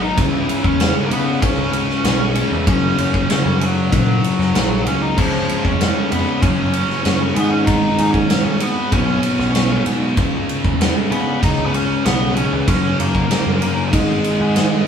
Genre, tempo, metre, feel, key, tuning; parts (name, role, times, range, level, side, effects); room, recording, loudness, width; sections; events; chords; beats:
quiet-loud alternative rock; 96 BPM; 4/4; straight; A4 = 439 Hz
octave-fuzz lead guitar; melody; 0.0-14.8 s; E3 to D#5; -22 LUFS; left 1 dB; distortion, analog delay
thick fuzz guitar; riff; 0.0-14.9 s; F#2 to C#4; -22 LUFS; left 1 dB; distortion
thick fuzz guitar; riff; 0.0-14.9 s; F#2 to C#4; -25 LUFS; equal
growling picked electric bass; bass; 0.0-14.8 s; G#1 to C#3; -22 LUFS; equal; overdrive
big rock drum kit; drums; 0.2-14.7 s; crash cymbal, kick drum, ride cymbal, snare drum; -19 LUFS; equal
moderate studio reverb, RT60 0.5 s; band playing live in one room, small room ambience; -15 LUFS; side -7 dB against mid
0.0-14.9 A section
0.2 C#m7; 2.7 F#; 5.2 C#; 6.4 F#5; 7.4 G#m; 8.9 Bsus2; 10.2 C#7(no3); 12.7 F#; 13.9 G#5
| 0.17 0.79 1.42 2.04 | 2.67 3.29 3.92 4.55 | 5.17 5.80 6.42 7.05 | 7.67 8.30 8.92 9.55 | 10.17 10.80 11.42 12.05 | 12.68 13.30 13.93 14.55